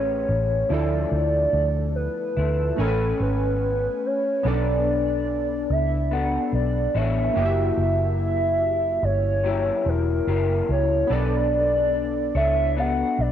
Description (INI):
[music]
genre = indie pop, bedroom pop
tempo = 72 BPM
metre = 4/4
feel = swing 60% on 16ths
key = unclear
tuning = A4 = 440 Hz
[part]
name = warbly nostalgic lead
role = melody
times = 0.0-13.3 s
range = A4 to F#5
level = -24 LUFS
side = right 1 dB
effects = wide subtle chorus, cassette tape
[part]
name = electric guitar through a small old amp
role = accompaniment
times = 0.0-13.3 s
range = D3 to C#5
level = -28 LUFS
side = left 8 dB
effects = analog chorus, vibrato effect, cassette tape
[part]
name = warm analog keys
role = accompaniment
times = 0.0-13.3 s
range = F3 to G#5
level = -33 LUFS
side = right 10 dB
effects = chorus, cassette tape
[part]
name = vintage muted fingered electric bass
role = bass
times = 0.0-13.3 s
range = E1 to D2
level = -24 LUFS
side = equal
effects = tube saturation
[sound]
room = light reverb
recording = home recording on cassette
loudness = -20 LUFS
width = side -10 dB against mid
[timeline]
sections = 0.0-4.5 A section; 4.5-13.3 B section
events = none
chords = 0.0 Amaj9; 0.7 Dmadd9; 2.8 Amaj9; 4.5 Bm9; 7.4 F#7b9; 11.1 Bm9